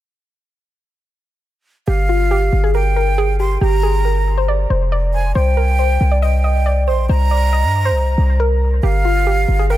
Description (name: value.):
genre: hip hop.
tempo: 138 BPM.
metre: 4/4.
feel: half-time.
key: G phrygian.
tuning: A4 = 440 Hz.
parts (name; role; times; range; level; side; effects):
soft round pluck; melody; 1.9-9.8 s; F4 to Eb5; -20 LUFS; equal; chorus, dub echo.
breathy jazz flute; second line; 1.9-9.8 s; F5 to C6; -22 LUFS; right 3 dB; dub echo.
warm 808-style bass; bass; 1.9-9.8 s; F1 to G2; -15 LUFS; equal; none.
room: little or no reverb.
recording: echo-heavy mix.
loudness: -14 LUFS.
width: side -14 dB against mid.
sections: 1.9-9.8 A section.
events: none.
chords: 1.9 Gm7; 5.4 C5; 8.8 G7(no3).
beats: | 1.88 2.31 2.75 3.18 | 3.61 4.05 4.48 4.92 | 5.35 5.79 6.22 6.66 | 7.09 7.53 7.96 8.40 | 8.83 9.27 9.70.